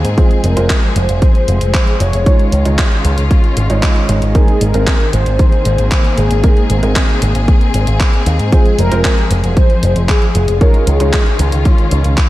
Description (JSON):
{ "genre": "italo disco", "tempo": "115 BPM", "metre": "4/4", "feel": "straight", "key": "Ab major", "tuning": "A4 = 440 Hz", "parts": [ { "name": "clear symphonic string section", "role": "sustained chords", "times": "0.0-12.3 s", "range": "Eb3 to Ab4", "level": "-20 LUFS", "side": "left 2 dB", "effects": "vintage 12-bit sampler grit" }, { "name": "picked electric bass with an envelope filter", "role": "bass", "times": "0.0-12.2 s", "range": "F1 to Ab2", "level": "-14 LUFS", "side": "equal", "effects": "none" }, { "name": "gated 80s digital drum machine", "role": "drums", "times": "0.0-12.3 s", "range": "handclaps, hi-hat", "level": "-21 LUFS", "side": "equal", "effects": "gated reverb" }, { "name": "mellow synth brass", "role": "melody", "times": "0.2-11.6 s", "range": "Ab4 to Db5", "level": "-20 LUFS", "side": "equal", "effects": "chorus, tape echo" }, { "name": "dark grand piano", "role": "stabs", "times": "0.2-11.2 s", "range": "Ab3 to Db5", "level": "-21 LUFS", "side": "right 3 dB", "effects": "none" }, { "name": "electronic kick drum", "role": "drums", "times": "0.2-12.3 s", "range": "none", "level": "-11 LUFS", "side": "equal", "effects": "overdrive" } ], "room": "little or no reverb", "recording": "none", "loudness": "-10 LUFS", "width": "side -16 dB against mid", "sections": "0.0-12.3 A section", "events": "none", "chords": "0.2 Fm; 2.3 Dbadd9; 4.4 Abadd9; 8.5 Fm; 10.6 Dbadd9" }